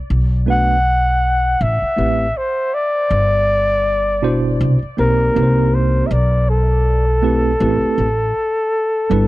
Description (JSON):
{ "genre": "hip hop, jazz-hop", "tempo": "80 BPM", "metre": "4/4", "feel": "swing 57% on 16ths", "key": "A dorian", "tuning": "A4 = 440 Hz", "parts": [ { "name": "upright bass", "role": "bass", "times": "0.1-9.3 s", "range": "G1 to C2", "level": "-17 LUFS", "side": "equal", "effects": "none" }, { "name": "breathy flugelhorn", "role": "melody", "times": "0.5-9.3 s", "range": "A4 to F#5", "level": "-17 LUFS", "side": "left 1 dB", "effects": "tape echo" }, { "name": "mellow tine electric piano", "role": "accompaniment", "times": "0.5-9.3 s", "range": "B2 to C5", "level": "-18 LUFS", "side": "right 2 dB", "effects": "medium stereo tremolo" } ], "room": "little or no reverb", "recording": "dry, close 1970s-style studio recording", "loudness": "-14 LUFS", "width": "side -17 dB against mid", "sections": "0.0-9.3 A section", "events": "none", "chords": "0.1 Bm7; 1.6 Am9; 3.1 G6; 4.6 Cmaj9#11; 5.4 Cm7; 6.1 Bm7; 7.6 Am9" }